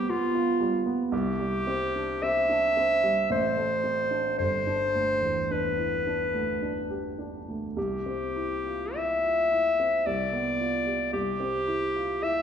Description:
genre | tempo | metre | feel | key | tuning
classical, romantic duo for clarinet and grand piano | 54 BPM | 3/4 | uneven beats, rubato | C major | A4 = 440 Hz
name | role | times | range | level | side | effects
bright clarinet | melody | 0.0-12.4 s | F4 to E5 | -26 LUFS | left 1 dB | none
warm baby grand piano | accompaniment | 0.0-12.4 s | G1 to G4 | -30 LUFS | right 2 dB | none
room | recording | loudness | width
wet recital hall reverb, RT60 1.4 s | heard from further back in the room, nothing above 10.5 kHz | -24 LUFS | side -8 dB against mid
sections
0.0-12.4 A section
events
none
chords
0.0 G7/D; 1.1 C; 3.3 Am; 4.4 G; 7.8 C; 10.1 G7/C; 11.1 C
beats
0.09 | 1.13 2.23 3.30 | 4.39 5.51 6.62 | 7.76 8.95 10.06 | 11.13 12.22

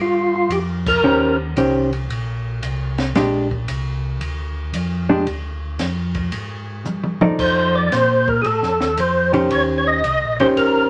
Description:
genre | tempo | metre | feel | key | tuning
soul jazz organ trio | 113 BPM | 4/4 | swing 67% on 8ths | unclear | A4 = 440 Hz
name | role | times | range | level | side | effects
percussive tonewheel organ | melody | 0.0-1.4, 7.4-10.9 s | F4 to Eb5 | -20 LUFS | equal | overdrive, chorus vibrato, slow rotary speaker
mellow tonewheel organ | bass | 0.0-10.9 s | G1 to Bb2 | -26 LUFS | equal | slow rotary speaker
compact cocktail drum kit | drums | 0.5-10.7 s | crash cymbal, hi-hat, kick drum, ride cymbal, snare drum, toms | -30 LUFS | equal | none
hollow-body jazz guitar | accompaniment | 1.0-10.9 s | Eb3 to D5 | -20 LUFS | equal | none
room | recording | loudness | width
moderate studio reverb, RT60 0.8 s | none | -19 LUFS | mono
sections
0.0-10.9 A section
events
band accent 0.8; drum fill 6.9-7.4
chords
0.0 Eb13; 3.2 Bb13; 7.4 F13; 9.5 Eb6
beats
0.51 | 1.03 1.56 2.09 2.62 | 3.15 3.68 4.21 4.74 | 5.27 5.80 6.33 6.86 | 7.39 7.92 8.46 8.98 | 9.52 10.05 10.58

